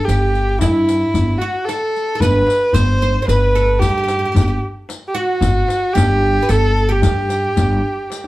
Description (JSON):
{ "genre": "Persian modal ensemble", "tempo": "112 BPM", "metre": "3/4", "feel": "straight", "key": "G dastgah mahur", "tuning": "A4 = 439 Hz", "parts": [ { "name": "rich kamancheh", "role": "melody", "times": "0.0-8.3 s", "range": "E4 to C5", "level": "-18 LUFS", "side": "equal", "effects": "none" }, { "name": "oud", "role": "second line", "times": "0.0-8.3 s", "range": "E4 to C5", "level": "-24 LUFS", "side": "right 2 dB", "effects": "none" }, { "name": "upright bass", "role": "bass", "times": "0.1-7.8 s", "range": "G1 to G2", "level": "-17 LUFS", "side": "equal", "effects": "none" }, { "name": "riq", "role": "percussion", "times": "0.1-8.2 s", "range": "none", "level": "-27 LUFS", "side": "left 4 dB", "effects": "none" }, { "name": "tombak", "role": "percussion", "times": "0.1-8.3 s", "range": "none", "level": "-20 LUFS", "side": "left 1 dB", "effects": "none" } ], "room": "moderate studio reverb, RT60 0.7 s", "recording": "heard from further back in the room", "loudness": "-14 LUFS", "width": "side -17 dB against mid", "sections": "0.0-8.3 A section", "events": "drum fill 8.1", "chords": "none", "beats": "0.08 | 0.61 1.15 1.68 | 2.21 2.75 3.28 | 3.82 4.36 4.89 | 5.43 5.96 6.50 | 7.04 7.58 8.12" }